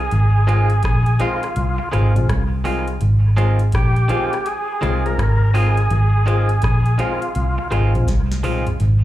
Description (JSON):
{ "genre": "roots reggae", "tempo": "83 BPM", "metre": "4/4", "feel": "swing 64% on 16ths", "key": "Ab major", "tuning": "A4 = 439 Hz", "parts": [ { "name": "overdriven tonewheel organ", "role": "melody", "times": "0.0-7.7 s", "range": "F4 to Bb4", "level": "-24 LUFS", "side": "equal", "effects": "tape echo, slapback echo" }, { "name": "vintage muted fingered electric bass", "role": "bass", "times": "0.0-9.0 s", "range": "Ab1 to C2", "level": "-16 LUFS", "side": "equal", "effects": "none" }, { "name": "booming analog drum machine", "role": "drums", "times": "0.1-9.0 s", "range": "hi-hat, kick drum, rim click, snare drum, toms", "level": "-24 LUFS", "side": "equal", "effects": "dub echo" }, { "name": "clean electric guitar", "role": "accompaniment", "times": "0.5-8.6 s", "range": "Eb3 to F4", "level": "-28 LUFS", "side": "right 6 dB", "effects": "tube saturation, tape echo, slapback echo" }, { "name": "dark upright piano", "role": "stabs", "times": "0.5-8.7 s", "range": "Ab3 to F4", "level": "-26 LUFS", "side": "left 4 dB", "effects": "slapback echo" } ], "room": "little or no reverb", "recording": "live gig heard through the venue's PA, club reverb", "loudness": "-15 LUFS", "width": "side -14 dB against mid", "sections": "0.0-9.0 A section", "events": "drum fill 8.1-8.8", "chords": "0.0 Ab6" }